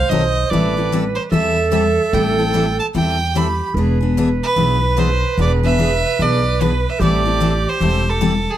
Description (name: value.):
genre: acoustic string swing (jazz manouche).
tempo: 148 BPM.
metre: 4/4.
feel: swing 62% on 8ths.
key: A minor.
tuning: A4 = 441 Hz.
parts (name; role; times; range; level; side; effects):
bright violin; melody; 0.0-8.6 s; G#4 to B5; -20 LUFS; right 2 dB; none.
breathy clarinet; second line; 0.0-8.4 s; G4 to B#4; -22 LUFS; right 6 dB; none.
upright bass; bass; 0.0-8.5 s; E1 to E2; -19 LUFS; equal; none.
picked steel-string acoustic guitar; accompaniment; 0.1-8.3 s; D#3 to A4; -20 LUFS; left 4 dB; none.
room: moderate club reverb, RT60 0.8 s.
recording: none.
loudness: -14 LUFS.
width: side -12 dB against mid.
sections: 0.0-8.6 A section.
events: none.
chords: 0.0 D#dim7; 0.5 Am9; 3.8 E7; 7.0 Am7.